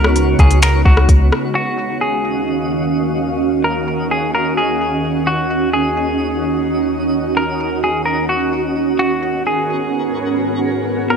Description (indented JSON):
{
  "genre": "hip hop, atmospheric cloud-rap",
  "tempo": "129 BPM",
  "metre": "4/4",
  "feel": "half-time",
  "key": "Eb minor",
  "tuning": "A4 = 442 Hz",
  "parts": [
    { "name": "semi-hollow electric guitar", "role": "melody", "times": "0.0-11.2 s", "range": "Gb4 to Bb4", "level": "-20 LUFS", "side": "equal", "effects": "tape echo" },
    { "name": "ethereal airy pad", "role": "sustained chords", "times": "0.0-11.2 s", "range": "Eb2 to F5", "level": "-18 LUFS", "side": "right 2 dB", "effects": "ensemble chorus, built-in reverb, sidechain pumping" },
    { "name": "soft 808-style bass", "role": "bass", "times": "0.0-1.3 s", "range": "Db2", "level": "-12 LUFS", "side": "equal", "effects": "none" },
    { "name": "smooth R&B drum kit", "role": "drums", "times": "0.0-1.4 s", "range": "finger snaps, hi-hat, kick drum, rim click", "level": "-13 LUFS", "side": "equal", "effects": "overdrive, vintage 12-bit sampler grit" },
    { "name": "twinkling granular texture", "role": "texture", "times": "0.0-11.2 s", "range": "Cb4 to Eb5", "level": "-28 LUFS", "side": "left 1 dB", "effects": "built-in reverb" }
  ],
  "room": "light reverb, digital ambience",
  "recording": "echo-heavy mix",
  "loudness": "-14 LUFS",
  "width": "side -6 dB against mid",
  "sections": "0.0-1.6 A section; 1.6-11.2 B section",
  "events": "none",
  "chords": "0.0 Db7sus4; 1.6 Ebm7; 9.0 Abm11"
}